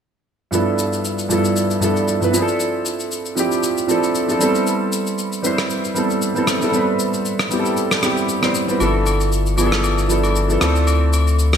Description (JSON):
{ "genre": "amapiano", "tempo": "116 BPM", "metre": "4/4", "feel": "swing 55% on 16ths", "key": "unclear", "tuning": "A4 = 440 Hz", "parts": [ { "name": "warm concert grand piano", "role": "accompaniment", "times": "0.5-11.6 s", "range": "G2 to C5", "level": "-18 LUFS", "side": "right 1 dB", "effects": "analog chorus" }, { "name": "shaker and rim click", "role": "drums", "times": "0.5-11.6 s", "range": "none", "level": "-24 LUFS", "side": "left 1 dB", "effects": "gated reverb" }, { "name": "warm sub bass", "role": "bass", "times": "8.8-11.6 s", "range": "G1 to D2", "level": "-17 LUFS", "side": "left 1 dB", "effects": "none" }, { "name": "agogo bells", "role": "percussion", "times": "8.8-11.3 s", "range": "none", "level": "-26 LUFS", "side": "left 6 dB", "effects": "none" } ], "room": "moderate lush hall reverb, RT60 1.7 s, studio reverb", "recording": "bright 1980s-style digital production", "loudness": "-16 LUFS", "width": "side -8 dB against mid", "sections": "0.5-11.6 A section", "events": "kick muted 6.7-8.8", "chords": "0.5 G13; 2.3 Dm9; 4.4 Am7; 8.8 G13; 10.6 Dm9" }